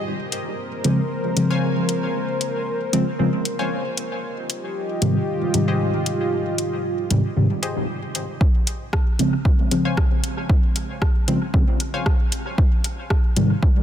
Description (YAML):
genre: dub techno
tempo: 115 BPM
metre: 4/4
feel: swing 54% on 16ths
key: unclear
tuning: A4 = 440 Hz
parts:
  - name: dark analog pad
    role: sustained chords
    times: 0.0-8.4 s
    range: F4 to Eb5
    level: -26 LUFS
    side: equal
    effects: chorus, sidechain pumping
  - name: wavetable chord stab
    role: riff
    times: 0.0-12.2 s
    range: G4 to Ab5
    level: -33 LUFS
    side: left 2 dB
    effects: sidechain pumping, dub echo
  - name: deep house drum kit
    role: drums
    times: 0.3-13.5 s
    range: hi-hat, rim click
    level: -28 LUFS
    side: left 1 dB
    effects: overdrive, dub echo
  - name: deep mellow chord stab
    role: stabs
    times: 0.8-13.5 s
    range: Ab2 to C4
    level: -22 LUFS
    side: equal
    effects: chorus, phaser, sidechain pumping, dub echo
  - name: electronic kick drum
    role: drums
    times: 8.4-13.7 s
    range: none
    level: -18 LUFS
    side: equal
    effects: overdrive
room: moderate huge ambient reverb, RT60 5.0 s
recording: dense, heavily limited modern master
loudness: -19 LUFS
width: side -10 dB against mid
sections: 0.0-8.4 A section; 8.4-13.8 B section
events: filter sweep on synth stab 0.0-8.4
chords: 0.1 Bbm9; 4.2 Fm9; 8.4 Dbmaj7; 12.6 Abmaj7